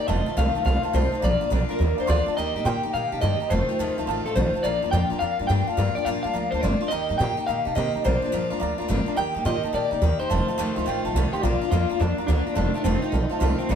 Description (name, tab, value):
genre	rockabilly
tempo	212 BPM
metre	4/4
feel	swing 65% on 8ths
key	Bb major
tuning	A4 = 440 Hz
part	electric guitar through a small old amp	melody	0.0-13.8 s	C4 to G5	-26 LUFS	left 2 dB	tremolo
part	picked steel-string acoustic guitar	accompaniment	0.0-13.8 s	F2 to G4	-29 LUFS	left 3 dB	none
part	warm upright piano	accompaniment	0.0-13.8 s	C5 to C6	-32 LUFS	right 4 dB	none
part	upright bass	bass	0.1-13.8 s	F1 to C3	-25 LUFS	right 1 dB	none
room	moderate stone room reverb, RT60 1.2 s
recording	band playing live in one room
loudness	-21 LUFS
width	side -8 dB against mid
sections	0.0-2.4 A section; 2.4-11.4 B section; 11.4-13.8 A section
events	none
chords	0.1 F7; 1.2 Bb; 2.4 Eb; 3.5 F7; 4.6 Bb; 6.9 Eb; 8.0 Bb; 9.2 Eb; 10.3 F7; 11.4 Bb; 12.6 F7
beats	| 0.08 0.37 0.65 0.94 | 1.22 1.51 1.79 2.08 | 2.37 2.65 2.94 3.22 | 3.51 3.79 4.08 4.36 | 4.64 4.93 5.21 5.50 | 5.78 6.06 6.35 6.63 | 6.91 7.20 7.48 7.76 | 8.04 8.33 8.61 8.89 | 9.17 9.46 9.74 10.02 | 10.30 10.59 10.87 11.15 | 11.43 11.71 12.00 12.28 | 12.56 12.85 13.13 13.41 | 13.69